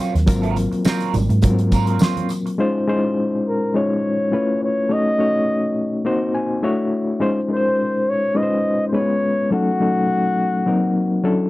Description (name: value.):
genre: lush 1970s-style soul.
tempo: 104 BPM.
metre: 4/4.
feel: swing 54% on 16ths.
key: Db major.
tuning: A4 = 440 Hz.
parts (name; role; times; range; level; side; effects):
overdriven reed electric piano; accompaniment; 0.0-11.5 s; Gb3 to Ab5; -19 LUFS; left 2 dB; fast tremolo.
electric guitar through a small old amp; riff; 0.0-2.5 s; Gb3 to C5; -26 LUFS; right 8 dB; wah.
damped 70s drum kit; drums; 0.0-2.6 s; hi-hat, kick drum, snare drum; -18 LUFS; equal; none.
hollow-body short-scale fingered electric bass; bass; 0.1-2.0 s; Ab1 to Ab2; -19 LUFS; right 1 dB; none.
congas; percussion; 0.3-2.3 s; none; -30 LUFS; right 6 dB; none.
tambourine; percussion; 0.3-2.4 s; none; -40 LUFS; left 2 dB; none.
breathy flugelhorn; melody; 3.5-11.5 s; Gb4 to Eb5; -21 LUFS; equal; none.
room: little or no reverb.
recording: dry, close 1970s-style studio recording.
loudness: -17 LUFS.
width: side -18 dB against mid.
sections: 0.0-2.6 A section; 2.6-11.5 B section.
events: reed electric piano fill 6.1-7.2.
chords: 0.0 Ab13; 2.6 Dbmaj9; 4.3 Db7alt; 4.9 Gbm6; 6.1 Cm7b5; 6.6 Dmaj9; 7.2 Dbmaj9; 8.9 Db7; 9.5 Gbm6; 10.7 Cm7b5.